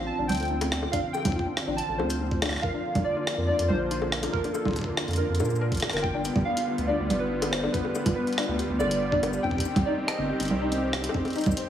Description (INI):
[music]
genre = IDM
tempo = 141 BPM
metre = 4/4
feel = straight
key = unclear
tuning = A4 = 439 Hz
[part]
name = warbly lo-fi synth keys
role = melody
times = 0.0-11.7 s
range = A4 to A5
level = -31 LUFS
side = right 1 dB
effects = chorus, tape echo
[part]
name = warm analog pad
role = sustained chords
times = 0.0-11.7 s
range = D3 to G4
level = -32 LUFS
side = right 2 dB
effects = chorus
[part]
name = felt-muted upright piano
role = arpeggios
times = 0.0-11.6 s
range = B3 to C5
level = -32 LUFS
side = left 4 dB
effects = digital delay
[part]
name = round analog bass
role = bass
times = 0.0-11.5 s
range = G1 to Bb2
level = -30 LUFS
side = equal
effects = tube saturation
[part]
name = jungle sampler-style drum kit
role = drums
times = 0.3-11.7 s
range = bongos, congas, hi-hat, rim click, shaker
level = -30 LUFS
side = right 1 dB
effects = studio reverb
[part]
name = electronic kick drum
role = drums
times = 0.9-11.5 s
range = none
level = -30 LUFS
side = equal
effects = studio reverb
[sound]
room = light reverb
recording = studio reverb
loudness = -24 LUFS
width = side -10 dB against mid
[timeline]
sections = 0.0-11.7 A section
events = none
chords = 0.0 Dm7; 2.6 Bb; 6.0 G7; 9.4 Cm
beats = 0.08 0.51 | 0.93 1.36 1.78 2.21 | 2.63 3.06 3.48 3.91 | 4.34 4.76 5.19 5.61 | 6.04 6.46 6.89 7.31 | 7.74 8.17 8.59 9.02 | 9.44 9.87 10.29 10.72 | 11.14 11.57